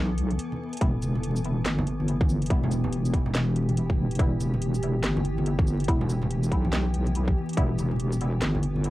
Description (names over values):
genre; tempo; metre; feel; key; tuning
deep dubstep; 142 BPM; 4/4; swing 61% on 16ths, half-time; E minor; A4 = 438 Hz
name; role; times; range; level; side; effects
granular cloud pad; sustained chords; 0.0-8.9 s; E3 to A4; -32 LUFS; left 1 dB; built-in reverb, cassette tape
wobble bass; bass; 0.0-8.9 s; E1 to B1; -26 LUFS; equal; chorus
garage drum kit; drums; 0.2-8.9 s; handclaps, hi-hat, shaker, snare drum; -32 LUFS; equal; small room ambience, cassette tape
congas; percussion; 0.3-8.8 s; none; -35 LUFS; right 1 dB; none
filtered dub chord stab; stabs; 0.8-7.7 s; G3 to E4; -35 LUFS; equal; phaser, cassette tape, dub echo
electronic kick drum; drums; 0.8-7.7 s; none; -24 LUFS; equal; small room ambience, cassette tape
room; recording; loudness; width
light reverb; home recording on cassette, vinyl crackle; -23 LUFS; side -16 dB against mid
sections
0.0-8.9 A section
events
break 0.4-0.8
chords
0.0 Em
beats
0.39 | 0.81 1.24 1.66 2.08 | 2.50 2.93 3.35 3.77 | 4.19 4.62 5.04 5.46 | 5.88 6.31 6.73 7.15 | 7.57 8.00 8.42 8.84